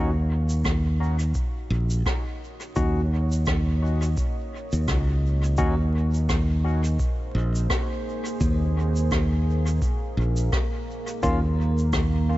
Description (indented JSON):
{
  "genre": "ambient dub",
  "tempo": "85 BPM",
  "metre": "4/4",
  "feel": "swing 57% on 16ths",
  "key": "Eb dorian",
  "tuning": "A4 = 440 Hz",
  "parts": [
    { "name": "deep dark ambient pad", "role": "sustained chords", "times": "0.2-12.4 s", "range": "Bb3 to F5", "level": "-35 LUFS", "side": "equal", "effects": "chorus, built-in reverb" },
    { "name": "barky tine electric piano", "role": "stabs", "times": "0.0-5.7, 11.2-11.4 s", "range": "Bb3 to Gb4", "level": "-32 LUFS", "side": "left 2 dB", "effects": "overdrive, analog chorus, dub echo" },
    { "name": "modern bright fingered electric bass", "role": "bass", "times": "0.0-12.4 s", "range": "Bb1 to Eb2", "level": "-22 LUFS", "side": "equal", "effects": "tube saturation" },
    { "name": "shaker and rim click", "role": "drums", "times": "0.5-12.1 s", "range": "none", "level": "-32 LUFS", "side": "equal", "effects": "dub echo" },
    { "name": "electronic kick drum", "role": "drums", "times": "0.6-12.1 s", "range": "none", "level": "-28 LUFS", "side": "equal", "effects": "none" }
  ],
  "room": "small room reverb",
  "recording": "vinyl crackle, nothing above 7.8 kHz",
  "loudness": "-22 LUFS",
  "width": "side -16 dB against mid",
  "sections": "0.0-12.4 A section",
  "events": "fade-in on ambient pad 0.0-12.4",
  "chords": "0.0 Ebm7; 11.2 Bbm"
}